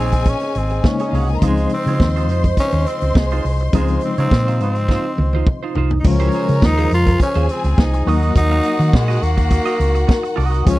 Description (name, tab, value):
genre	disco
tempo	104 BPM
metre	4/4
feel	straight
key	Eb dorian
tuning	A4 = 440 Hz
part	growling tenor saxophone	melody	0.0-10.8 s	Ab3 to F4	-22 LUFS	equal	none
part	warm studio string section	second line	0.0-10.8 s	Db4 to C6	-26 LUFS	left 1 dB	none
part	reed electric piano	accompaniment	0.0-10.8 s	Db3 to C5	-24 LUFS	left 4 dB	fast tremolo
part	semi-hollow electric guitar	accompaniment	0.0-10.7 s	Eb4 to F5	-26 LUFS	right 8 dB	phaser
part	dark French horn section	sustained chords	0.0-10.8 s	Db3 to Eb5	-29 LUFS	left 1 dB	none
part	hollow-body short-scale fingered electric bass	bass	0.0-10.8 s	Ab1 to Eb3	-17 LUFS	equal	none
part	vintage drum kit	drums	0.1-10.8 s	crash cymbal, hi-hat, kick drum, snare drum, toms	-15 LUFS	equal	none
room	little or no reverb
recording	dry, close 1970s-style studio recording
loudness	-14 LUFS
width	side -17 dB against mid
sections	0.0-6.0 A section; 6.0-10.8 B section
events	drum fill 4.9-6.0; reed electric piano fill 9.8-10.7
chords	0.0 Bbm11; 1.4 Dbmaj9; 8.1 Ebm